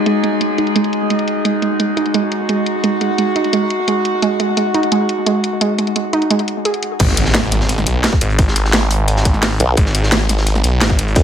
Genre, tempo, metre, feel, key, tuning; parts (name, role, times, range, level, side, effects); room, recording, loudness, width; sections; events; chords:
dark technical drum and bass; 173 BPM; 4/4; straight; A4 = 440 Hz
metallic inharmonic drone; sustained chords; 0.0-7.0 s; G#3 to G#4; -18 LUFS; equal; chorus, built-in reverb, sidechain pumping
warbly dusty pluck; arpeggios; 0.1-6.7 s; G#3 to G#4; -18 LUFS; right 3 dB; chorus, sidechain pumping, ping-pong delay
drum and bass drum kit; drums; 0.1-11.2 s; crash cymbal, hi-hat, snare drum; -19 LUFS; equal; overdrive, low-pass filter on hats, low-pass filter on cymbals, low-pass filter on snare
snarling distorted saw bass; bass; 7.0-11.1 s; G#1 to B1; -16 LUFS; equal; distortion, tube saturation
crunchy breakbeat drum kit; drums; 7.0-11.2 s; hi-hat, snare drum; -24 LUFS; equal; high-pass filter on hats, high-pass filter on snare, high-pass filter on room
electronic kick drum; drums; 7.0-11.2 s; -14 LUFS; equal; overdrive
impact; sound effects; 7.0-8.4 s; -22 LUFS; equal
formant-sweep wobble bass; bass; 9.6-11.2 s; D#1 to B1; -13 LUFS; equal; chorus, tube saturation
light reverb; -13 LUFS; side -9 dB against mid
0.0-7.0 A section; 7.0-11.2 B section
filter sweep on synth arpeggio sound 0.0-7.0; drop 7.0-11.2; impact 7.0-8.4
0.0 G#5